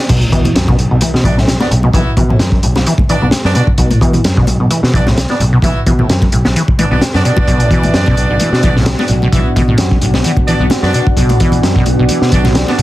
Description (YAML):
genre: breakbeat, breaks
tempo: 130 BPM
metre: 4/4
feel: swing 54% on 16ths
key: B minor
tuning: A4 = 442 Hz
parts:
  - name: deep dark ambient pad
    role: sustained chords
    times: 0.0-0.1, 8.4-12.8 s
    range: B3 to F#5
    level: -19 LUFS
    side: equal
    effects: chorus, built-in reverb, vintage 12-bit sampler grit, sidechain pumping
  - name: clear horn section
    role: stabs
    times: 0.0-12.8 s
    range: B3 to E5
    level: -19 LUFS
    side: right 2 dB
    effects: digital delay
  - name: swell and impact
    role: sound effects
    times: 0.2-1.9 s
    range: none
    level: -24 LUFS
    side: equal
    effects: none
  - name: deep acid bass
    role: riff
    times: 0.1-12.8 s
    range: A2 to B3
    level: -15 LUFS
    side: equal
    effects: lush chorus, cassette tape, digital delay
  - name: picked electric bass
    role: bass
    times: 0.1-12.8 s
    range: B1 to B2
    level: -15 LUFS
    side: equal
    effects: none
  - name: crunchy breakbeat drum kit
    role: drums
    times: 0.1-12.8 s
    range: crash cymbal, hi-hat, kick drum, snare drum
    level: -13 LUFS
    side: equal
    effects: high-pass filter on kick, high-pass filter on hats, high-pass filter on cymbals, high-pass filter on snare, high-pass filter on room
  - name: congas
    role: percussion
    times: 0.1-12.8 s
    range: none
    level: -22 LUFS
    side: left 2 dB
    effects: none
room: light reverb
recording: dense, heavily limited modern master, vinyl crackle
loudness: -9 LUFS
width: side -16 dB against mid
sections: 0.1-12.8 A section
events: drop 0.1-12.8; impact 0.1-1.9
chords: 0.1 Bm